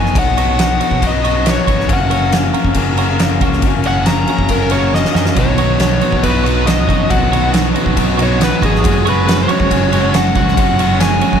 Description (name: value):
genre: quiet-loud alternative rock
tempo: 138 BPM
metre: 4/4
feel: straight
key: B major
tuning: A4 = 439 Hz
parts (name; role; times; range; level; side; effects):
- high-gain lead guitar; melody; 0.0-11.4 s; G#4 to A#5; -19 LUFS; left 2 dB; distortion, slapback echo
- twelve-string electric guitar; arpeggios; 0.0-11.4 s; G#3 to C#5; -23 LUFS; right 8 dB; slapback echo
- overdriven electric guitar; riff; 0.0-11.4 s; F#2 to F#4; -20 LUFS; left 10 dB; spring reverb, slapback echo
- overdriven picked electric bass; bass; 0.0-11.4 s; F#1 to F#2; -18 LUFS; equal; none
- oversized low-tuned drum kit; drums; 0.1-11.4 s; kick drum, ride cymbal, snare drum; -16 LUFS; right 1 dB; none
- thick fuzz guitar; riff; 5.4-11.4 s; B2 to F#4; -18 LUFS; right 10 dB; distortion, slapback echo
room: moderate lush hall reverb, RT60 1.9 s, small room ambience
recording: big arena sound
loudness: -11 LUFS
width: side -8 dB against mid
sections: 0.0-11.4 A section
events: lead electric guitar solo 0.0-11.4; drum fill 4.9-5.4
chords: 0.0 Badd9; 1.9 F#; 5.4 Badd9; 8.8 F#sus2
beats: | 0.16 0.60 1.03 1.47 | 1.90 2.33 2.77 3.20 | 3.64 4.07 4.51 4.94 | 5.38 5.81 6.24 6.68 | 7.11 7.55 7.98 8.41 | 8.85 9.28 9.71 10.15 | 10.58 11.02